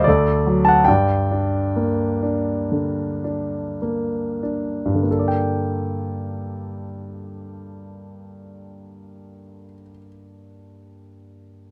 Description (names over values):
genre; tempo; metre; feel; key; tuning
classical, lyrical solo piano; 46-77 BPM; 4/4; rubato; G minor; A4 = 440 Hz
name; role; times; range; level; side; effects
warm concert grand piano; solo; 0.0-11.7 s; D2 to A5; -22 LUFS; equal; none
room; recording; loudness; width
light reverb; close, detailed microphones; -21 LUFS; mono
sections
0.0-5.1 A section; 5.1-10.1 B section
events
slowing down 0.0-5.1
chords
0.1 D; 0.9 Gm; 5.1 Gmadd9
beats
0.07 | 0.88 1.75 2.71 3.82 | 5.07 6.34 7.58 8.83